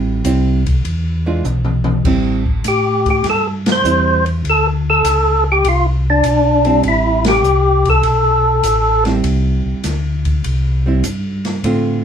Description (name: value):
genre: soul jazz organ trio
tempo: 100 BPM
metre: 4/4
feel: swing 69% on 8ths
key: A minor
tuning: A4 = 438 Hz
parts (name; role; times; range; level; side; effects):
- archtop guitar, miked and amplified; accompaniment; 0.0-12.0 s; D3 to F4; -18 LUFS; right 4 dB; none
- mellow tonewheel organ; bass; 0.0-12.0 s; A1 to A2; -17 LUFS; equal; chorus vibrato, slow rotary speaker
- open jazz drum kit; drums; 0.2-11.8 s; crash cymbal, hi-hat, kick drum, ride cymbal, snare drum, toms; -23 LUFS; left 1 dB; none
- percussive tonewheel organ; melody; 2.7-9.0 s; D4 to C5; -13 LUFS; left 1 dB; slow rotary speaker, overdrive
room: wet small room reverb, RT60 0.6 s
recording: band playing live in one room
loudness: -13 LUFS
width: side -8 dB against mid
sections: 0.0-2.0 A section; 2.0-12.0 A section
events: drum fill 1.4-2.0; band accent 3.5, 7.1-7.4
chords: 0.0 Am7; 0.8 E7b9; 2.0 Am7; 4.4 D5; 6.8 Am7